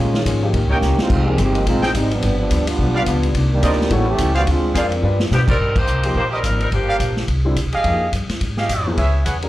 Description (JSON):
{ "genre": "jazz, big band swing", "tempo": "213 BPM", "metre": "4/4", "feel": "swing 59% on 8ths", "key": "C minor", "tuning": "A4 = 440 Hz", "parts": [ { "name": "clear trombone section", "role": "second line", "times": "0.0-4.8 s", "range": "Eb3 to Ab4", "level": "-21 LUFS", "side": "right 2 dB", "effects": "none" }, { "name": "vintage hollow-body jazz guitar", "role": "accompaniment", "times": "0.0-5.5 s", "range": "G2 to B4", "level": "-27 LUFS", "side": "left 3 dB", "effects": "slapback echo" }, { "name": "upright bass", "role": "bass", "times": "0.0-9.5 s", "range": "G1 to B2", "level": "-19 LUFS", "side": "equal", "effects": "none" }, { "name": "warm upright piano", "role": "accompaniment", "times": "0.1-9.5 s", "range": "D3 to D5", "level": "-24 LUFS", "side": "left 2 dB", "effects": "slapback echo" }, { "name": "vintage drum kit", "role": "drums", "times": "0.1-9.5 s", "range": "crash cymbal, hi-hat, kick drum, ride cymbal, snare drum", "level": "-23 LUFS", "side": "equal", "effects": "none" }, { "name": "mellow trumpet section", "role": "stabs", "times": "0.7-9.4 s", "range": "G4 to G5", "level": "-22 LUFS", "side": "right 1 dB", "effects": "slapback echo" }, { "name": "bright saxophone section", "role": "melody", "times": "5.3-7.3 s", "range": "F3 to C5", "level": "-21 LUFS", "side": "left 1 dB", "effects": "slapback echo" } ], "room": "light reverb", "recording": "live gig heard through the venue's PA, club reverb", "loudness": "-16 LUFS", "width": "side -16 dB against mid", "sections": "0.0-5.6 A section; 5.6-9.5 B section", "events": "trombone section solo 0.0-5.6; drum fill 0.8, 5.0; band accent 5.5, 5.7", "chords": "0.0 Bbm7; 0.5 Eb7; 1.1 Abmaj7; 2.2 G7; 3.3 Cm9; 3.9 A7; 4.5 Dm7b5; 5.0 G7; 5.6 Cm7; 6.7 Gm7; 7.3 C7b13; 7.8 Fm9; 9.0 Dbm7", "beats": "0.25 0.54 0.82 | 1.10 1.38 1.66 1.94 | 2.22 2.50 2.79 3.07 | 3.35 3.63 3.91 4.19 | 4.47 4.75 5.03 5.31 | 5.59 5.88 6.16 6.44 | 6.72 7.00 7.28 7.56 | 7.85 8.13 8.41 8.69 | 8.97 9.25" }